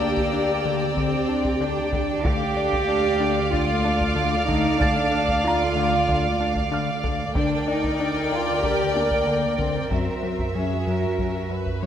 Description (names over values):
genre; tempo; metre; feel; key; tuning
cinematic, suspense film score; 94 BPM; 4/4; straight; D minor; A4 = 440 Hz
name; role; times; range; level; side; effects
clear studio violin section; melody; 0.0-11.9 s; E5 to G5; -32 LUFS; left 2 dB; none
warm studio violin section; second line; 0.0-11.9 s; G#4 to D5; -30 LUFS; right 1 dB; none
dark studio viola section; accompaniment; 0.0-11.9 s; A3 to Bb4; -30 LUFS; equal; none
mellow French horn section; sustained chords; 0.0-11.9 s; A3 to F5; -28 LUFS; left 1 dB; none
fat analog bass; riff; 0.0-11.9 s; F#2 to D4; -29 LUFS; left 5 dB; none
warm chamber double bass section; bass; 0.0-11.9 s; D2 to F#2; -31 LUFS; right 3 dB; none
warm studio cello section; bass; 0.0-11.8 s; Bb3 to G4; -26 LUFS; right 2 dB; none
warm studio violin section; texture; 0.0-7.0 s; Bb5 to F6; -34 LUFS; equal; none
solo taiko drums; drums; 0.2-11.9 s; none; -30 LUFS; equal; none
music box; texture; 4.8-8.6 s; F5 to Bb6; -33 LUFS; right 2 dB; none
room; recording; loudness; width
wet scoring stage reverb, RT60 1.8 s; none; -20 LUFS; side -9 dB against mid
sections
0.0-11.9 A section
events
none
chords
0.0 Gm/D; 2.3 Dm; 7.4 Gm/D; 9.9 F#7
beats
0.34 0.97 1.61 | 2.25 2.89 3.53 4.17 | 4.80 5.44 6.08 6.72 | 7.36 8.00 8.63 9.27 | 9.91 10.55 11.19 11.83